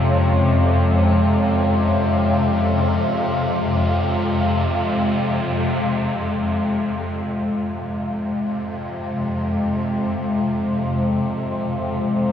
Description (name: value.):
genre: dark ambient drone.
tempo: free time.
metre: none.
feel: none.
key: F minor.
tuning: A4 = 441 Hz.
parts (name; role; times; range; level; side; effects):
deep dark ambient pad; sustained chords; 0.0-12.3 s; F2 to F5; -20 LUFS; left 1 dB; chorus, built-in reverb, shimmer reverb.
swarming drone; drone; 0.0-12.3 s; F2 to C3; -22 LUFS; left 1 dB; built-in reverb.
room: wet huge ambient reverb, RT60 7.3 s.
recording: small room reverb.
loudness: -18 LUFS.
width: side -9 dB against mid.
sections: 0.0-6.4 A section; 6.4-12.3 B section.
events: none.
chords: 0.0 Db/F; 6.4 Fm.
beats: free time.